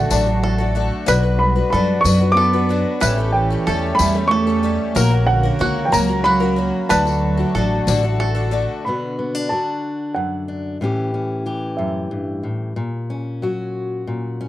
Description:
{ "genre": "indie folk with a building arrangement", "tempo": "62 BPM (dotted quarters)", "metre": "6/8", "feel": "straight", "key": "unclear", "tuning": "A4 = 441 Hz", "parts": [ { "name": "dark upright piano", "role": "melody", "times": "0.0-12.4 s", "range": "E5 to D6", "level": "-21 LUFS", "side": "right 1 dB", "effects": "none" }, { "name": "dark cello", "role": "second line", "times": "0.0-8.2 s", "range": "D3 to B3", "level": "-23 LUFS", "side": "right 4 dB", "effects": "none" }, { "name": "picked twelve-string acoustic guitar", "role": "accompaniment", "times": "0.0-8.9 s", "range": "A2 to B4", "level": "-23 LUFS", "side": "left 6 dB", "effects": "none" }, { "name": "hand-pumped harmonium", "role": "sustained chords", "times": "0.0-8.8 s", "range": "D3 to G4", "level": "-29 LUFS", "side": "right 2 dB", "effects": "none" }, { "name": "bluegrass banjo", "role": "arpeggios", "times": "0.0-8.8 s", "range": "F#4 to B4", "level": "-26 LUFS", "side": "right 3 dB", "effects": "none" }, { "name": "upright bass", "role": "bass", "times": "0.0-8.7 s", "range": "A1 to F#2", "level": "-20 LUFS", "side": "equal", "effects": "none" }, { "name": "tambourine", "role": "percussion", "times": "0.1-8.0 s", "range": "none", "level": "-27 LUFS", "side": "left 9 dB", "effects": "none" }, { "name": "fingerpicked steel-string acoustic guitar", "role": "accompaniment", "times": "8.9-14.5 s", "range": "F#2 to G4", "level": "-23 LUFS", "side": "left 2 dB", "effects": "none" } ], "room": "studio ambience", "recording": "dry, close 1970s-style studio recording", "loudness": "-16 LUFS", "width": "side -14 dB against mid", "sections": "0.0-8.9 A section; 8.9-14.5 B section", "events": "none", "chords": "0.0 D; 1.1 Bm; 3.0 A7; 5.0 F#/A#; 6.9 D; 8.9 Bm; 10.8 A7; 12.8 F#/A#" }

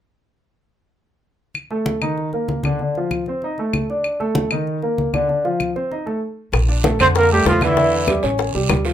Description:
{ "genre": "Afro-Cuban jazz", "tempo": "193 BPM", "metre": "4/4", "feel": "straight", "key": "Bb major", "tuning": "A4 = 440 Hz", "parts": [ { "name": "congas", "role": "percussion", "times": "1.5-8.9 s", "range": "none", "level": "-25 LUFS", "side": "left 1 dB", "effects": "none" }, { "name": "claves", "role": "percussion", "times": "1.6-8.9 s", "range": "none", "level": "-26 LUFS", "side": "left 5 dB", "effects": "none" }, { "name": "warm grand piano", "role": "accompaniment", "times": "1.7-8.9 s", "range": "D3 to Eb5", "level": "-21 LUFS", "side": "equal", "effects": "none" }, { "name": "upright bass", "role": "bass", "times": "6.5-8.9 s", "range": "A1 to F2", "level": "-20 LUFS", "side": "equal", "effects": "none" }, { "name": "bongos", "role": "percussion", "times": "6.5-8.9 s", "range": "none", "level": "-23 LUFS", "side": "left 5 dB", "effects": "none" }, { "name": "guiro", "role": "percussion", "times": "6.5-8.9 s", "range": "none", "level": "-30 LUFS", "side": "right 6 dB", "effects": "none" }, { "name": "breathy trumpet", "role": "melody", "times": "7.0-8.2 s", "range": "E4 to C5", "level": "-17 LUFS", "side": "equal", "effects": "none" }, { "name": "growling tenor saxophone", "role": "second line", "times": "7.0-8.2 s", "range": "E3 to C4", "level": "-20 LUFS", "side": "right 5 dB", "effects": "none" } ], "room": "moderate club reverb, RT60 0.6 s", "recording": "minimal, uncompressed stereo recording", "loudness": "-17 LUFS", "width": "side -10 dB against mid", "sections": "1.6-6.5 A section; 6.5-8.9 B section", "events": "stop 6.2-6.5", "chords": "1.6 N.C.; 2.2 Eb5; 2.8 Dm7; 3.4 Asus4; 4.0 D5; 4.7 Eb5; 5.3 Dm7; 5.9 N.C.; 6.5 Bbmaj7; 7.8 Aadd11; 8.4 A7alt" }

